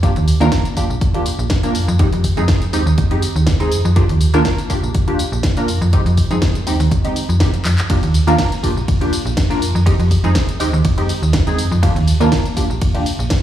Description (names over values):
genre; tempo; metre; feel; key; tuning
filtered disco house; 122 BPM; 4/4; swing 53% on 16ths; F dorian; A4 = 440 Hz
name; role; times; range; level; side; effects
funky polysynth comp; accompaniment; 0.0-13.1 s; Ab3 to Bb4; -20 LUFS; right 1 dB; chorus, phaser, sidechain pumping
slap-like FM bass; bass; 0.0-13.4 s; Eb1 to F2; -16 LUFS; equal; sidechain pumping
electronic kick drum; drums; 0.0-13.4 s; none; -17 LUFS; equal; studio reverb
house drum kit; drums; 0.0-13.4 s; handclaps, hi-hat, ride cymbal, snare drum, tambourine; -24 LUFS; left 1 dB; studio reverb
room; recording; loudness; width
light reverb; played on a big sound system in a bare room, large studio reverb, studio reverb; -13 LUFS; side -11 dB against mid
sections
0.0-13.4 A section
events
drum fill 7.7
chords
0.0 Ebmaj7(no3); 1.8 Fm7; 4.0 Ebmaj7(no3); 5.7 Fm9; 7.9 Ebmaj7; 9.6 Fm7; 11.8 Ebmaj7(no3)